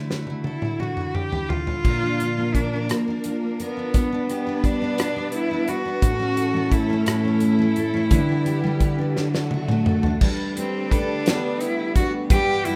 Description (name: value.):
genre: six-eight pop ballad.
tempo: 57 BPM (dotted quarters).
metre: 6/8.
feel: straight.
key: G major.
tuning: A4 = 440 Hz.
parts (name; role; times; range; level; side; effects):
clear cello; melody; 0.0-12.8 s; A3 to G4; -28 LUFS; equal; slapback echo, plate reverb.
picked steel-string acoustic guitar; accompaniment; 0.0-12.8 s; A2 to B4; -26 LUFS; equal; double-tracked.
natural country drum kit; drums; 0.1-12.8 s; crash cymbal, hi-hat, kick drum, rim click, snare drum, toms; -25 LUFS; equal; none.
clear studio string section; sustained chords; 1.9-12.8 s; G2 to F#5; -33 LUFS; equal; none.
room: moderate studio reverb, RT60 0.6 s.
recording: rough home demo mix.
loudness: -22 LUFS.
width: mono.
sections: 0.0-1.8 A section; 1.8-10.2 B section; 10.2-12.8 C section.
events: drum fill 0.0-1.8, 9.2-10.2.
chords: 0.0 Dadd9; 1.8 Bb; 3.9 G/B; 6.0 A; 8.1 G/D; 9.2 D; 10.2 Gadd9.